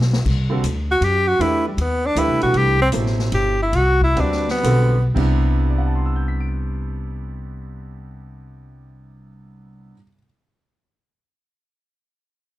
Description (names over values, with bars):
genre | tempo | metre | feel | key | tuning
modal jazz | 110-158 BPM | 3/4 | swing 66% on 8ths | C lydian | A4 = 440 Hz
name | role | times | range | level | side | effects
upright bass | bass | 0.0-9.9 s | G1 to F#2 | -20 LUFS | equal | none
vintage drum kit | drums | 0.0-5.3 s | crash cymbal, hi-hat, kick drum, ride cymbal, snare drum | -30 LUFS | left 2 dB | none
bright grand piano | accompaniment | 0.5-10.2 s | B2 to D7 | -25 LUFS | right 4 dB | none
clear tenor saxophone | melody | 0.9-5.0 s | G3 to G4 | -19 LUFS | equal | plate reverb
room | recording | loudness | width
light reverb | dark, warm production | -16 LUFS | side -15 dB against mid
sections
0.0-5.2 A section; 5.2-8.4 B section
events
drum fill 0.0; tenor saxophone solo 0.0-5.2; slowing down 2.5-5.2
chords
0.0 Cmaj9